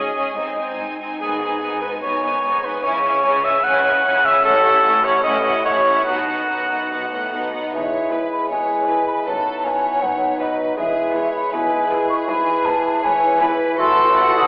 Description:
classical; 142-160 BPM; 4/4; straight; E major; A4 = 440 Hz
rich studio violin section; melody; 0.0-14.5 s; G#4 to G#5; -27 LUFS; equal
mellow cor anglais; second line; 0.0-14.5 s; F#4 to F#5; -20 LUFS; equal
rich studio violin section; second line; 0.0-14.5 s; D#4 to B4; -30 LUFS; equal
rich symphonic viola section; accompaniment; 0.0-14.5 s; F#3 to E4; -25 LUFS; equal
clear symphonic double bass section; bass; 0.0-14.5 s; E1 to C#2; -34 LUFS; equal
rich symphonic cello section; bass; 0.0-14.5 s; E2 to C#3; -30 LUFS; equal
mellow hollow concert flute; second line; 7.3-14.5 s; D#5 to D#6; -19 LUFS; equal
clear clarinet; second line; 7.7-14.5 s; D#4 to F#4; -28 LUFS; equal
clear bassoon; accompaniment; 7.7-14.5 s; E3 to G#3; -25 LUFS; equal
warm French horn section; sustained chords; 7.7-13.9 s; F#3 to E4; -30 LUFS; equal
wet recital hall reverb, RT60 1.6 s; recorded in a church or concert hall, telephone sound; -16 LUFS; side -28 dB against mid
0.0-7.7 A section; 7.7-14.5 B section
0.4 G#; 1.2 G#m; 2.8 C#m; 4.4 F#m7/A; 6.1 B; 7.7 E; 9.3 B7/F#; 10.8 E; 12.3 E/G#; 13.8 F#m7b5/A
0.37 0.79 | 1.21 1.61 2.02 2.43 | 2.84 3.24 3.65 4.05 | 4.45 4.84 5.25 5.65 | 6.07 6.49 6.91 7.33 | 7.74 8.12 8.50 8.89 | 9.27 9.64 10.02 10.40 | 10.78 11.15 11.53 11.91 | 12.28 12.66 13.04 13.41 | 13.79 14.17

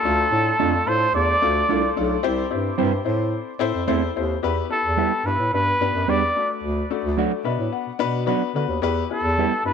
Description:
soul; 109 BPM; 4/4; straight; D minor, E minor from 4.4 s; A4 = 438 Hz
breathy trumpet; melody; 0.0-9.7 s; A4 to D5; -22 LUFS; equal; tape echo
glockenspiel with soft plastic mallets; second line; 0.0-1.9 s; A5 to D6; -31 LUFS; right 10 dB; tape echo
warm upright piano; accompaniment; 0.0-9.7 s; A3 to B5; -25 LUFS; left 10 dB
mellow bass clarinet; bass; 0.0-9.7 s; B1 to D3; -25 LUFS; right 1 dB
mellow electric guitar; stabs; 0.6-9.5 s; F#3 to A4; -24 LUFS; right 14 dB
wet spring reverb, RT60 1.1 s; 1960s-style stereo with parts hard left and right; -19 LUFS; side -7 dB against mid
0.0-4.4 A section; 4.4-9.7 B section
upright piano fill 7.2-8.8
0.0 Dm; 2.2 C; 3.1 Am; 4.4 Em; 5.5 G; 6.4 D; 7.5 Bm; 8.8 Em
| 0.04 0.59 1.14 1.68 | 2.23 2.78 3.33 3.88 | 4.43 4.98 5.53 6.08 | 6.63 7.18 7.73 8.28 | 8.83 9.38

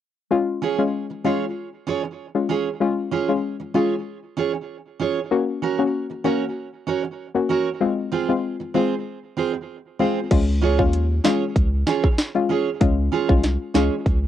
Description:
dancehall; 96 BPM; 4/4; straight; Db major; A4 = 440 Hz
soft round pluck; accompaniment; 0.3-14.0 s; Ab3 to Gb4; -22 LUFS; left 5 dB; chorus
picked steel-string acoustic guitar; arpeggios; 0.6-13.9 s; C4 to Db5; -24 LUFS; right 8 dB; tape echo
saturated sub bass; bass; 10.3-14.3 s; C2 to Eb2; -21 LUFS; equal
island pop drum kit; drums; 10.3-14.2 s; crash cymbal, hi-hat, kick drum, rim click, snare drum; -20 LUFS; equal; overdrive, cassette tape
light reverb; home recording on cassette; -20 LUFS; side -11 dB against mid
0.3-10.3 A section; 10.3-14.3 B section
0.3 Db; 5.3 Gb; 7.8 Ab6; 10.3 Db
| 0.31 0.93 1.56 2.18 | 2.81 3.43 4.06 4.68 | 5.31 5.93 6.56 7.18 | 7.81 8.43 9.06 9.68 | 10.31 10.93 11.56 12.18 | 12.81 13.43 14.06

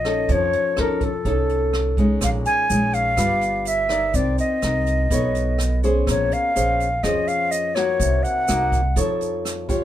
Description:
bossa nova; 124 BPM; 4/4; straight; Bb minor; A4 = 440 Hz
reedy concert flute; melody; 0.0-9.0 s; A4 to Ab5; -21 LUFS; left 1 dB
nylon-string guitar; accompaniment; 0.0-9.8 s; Bb2 to D5; -24 LUFS; left 1 dB
upright bass; bass; 0.0-9.8 s; G1 to F2; -24 LUFS; right 1 dB
jazz brush drum kit; drums; 0.0-9.8 s; hi-hat, kick drum, rim click; -28 LUFS; right 1 dB
egg shaker; percussion; 2.2-9.8 s; -33 LUFS; right 8 dB
moderate small room reverb, RT60 0.5 s; band playing live in one room; -18 LUFS; side -12 dB against mid
0.0-9.8 A section
0.3 F7b13; 2.2 Bbm7; 3.2 G7; 4.1 Cm9; 5.1 B9; 6.1 Bbm9; 8.0 Cm7b5; 9.0 Faug7
| 0.28 0.77 1.25 1.73 | 2.21 2.70 3.18 3.66 | 4.14 4.62 5.11 5.59 | 6.07 6.55 7.04 7.52 | 8.00 8.48 8.97 9.45

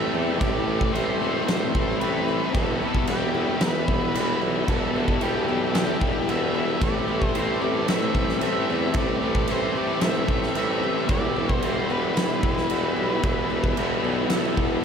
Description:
rock, shoegaze and dream pop; 112 BPM; 4/4; straight; A minor; A4 = 440 Hz
octave-fuzz lead guitar; melody; 0.0-14.8 s; G4 to E5; -31 LUFS; equal; distortion, tape echo
warm analog pad; sustained chords; 0.0-14.8 s; G4 to E6; -34 LUFS; left 2 dB; chorus
picked plugged-in twelve-string acoustic guitar; arpeggios; 0.0-14.8 s; G3 to E4; -33 LUFS; left 8 dB; lush chorus, tape echo
biting overdriven guitar; riff; 0.0-14.8 s; E2 to E4; -30 LUFS; left 8 dB; analog chorus
tight distorted guitar; riff; 0.0-14.8 s; E2 to A3; -31 LUFS; equal; distortion
twangy electric guitar; riff; 0.0-14.8 s; A2 to E4; -30 LUFS; right 8 dB; reverse reverb
warm tuba; bass; 0.0-14.8 s; E1 to E2; -29 LUFS; right 1 dB
huge arena drum kit; drums; 0.4-14.7 s; crash cymbal, kick drum, snare drum; -27 LUFS; equal
moderate huge ambient reverb, RT60 8.0 s; dreamy mix soaked in reverb; -21 LUFS; side -7 dB against mid
0.0-14.8 A section
0.0 Am7; 2.6 Em; 6.8 Am7; 11.1 Em
| 0.42 0.95 1.49 2.02 | 2.55 3.09 3.62 4.15 | 4.69 5.22 5.75 6.29 | 6.82 7.36 7.89 8.43 | 8.96 9.49 10.03 10.56 | 11.10 11.63 12.17 12.70 | 13.24 13.77 14.30 14.84

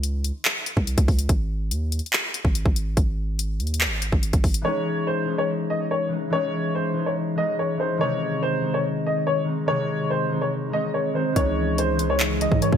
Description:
hip hop, drill; 143 BPM; 4/4; half-time; C# harmonic minor; A4 = 441 Hz
long sustained 808-style bass; bass; 0.0-4.6, 11.4-12.8 s; G#1 to G#2; -25 LUFS; equal
drill drum kit; drums; 0.0-4.6, 11.4-12.8 s; handclaps, hi-hat, kick drum; -22 LUFS; equal; gated reverb
warm upright piano; melody; 4.6-12.8 s; B#4 to D#5; -25 LUFS; equal; lush chorus, low-pass filter, digital delay
concert harp; accompaniment; 4.6-12.8 s; B#2 to D#4; -25 LUFS; left 2 dB; low-pass filter
glassy FM pad; sustained chords; 12.0-12.8 s; C#3 to D#4; -28 LUFS; right 4 dB; ensemble chorus, built-in reverb, phaser
light reverb; bright 1980s-style digital production; -21 LUFS; side -8 dB against mid
0.0-4.6 A section; 4.6-12.8 B section
break 0.0-4.6
0.0 C#5; 1.3 G#5; 4.6 C#madd9; 8.0 G#; 11.4 C#madd9
0.03 0.45 0.87 | 1.29 1.71 2.13 2.55 | 2.97 3.39 3.81 4.23 | 4.65 5.07 5.49 5.91 | 6.33 6.75 7.17 7.58 | 8.01 8.43 8.84 9.26 | 9.68 10.10 10.52 10.94 | 11.36 11.78 12.20 12.62

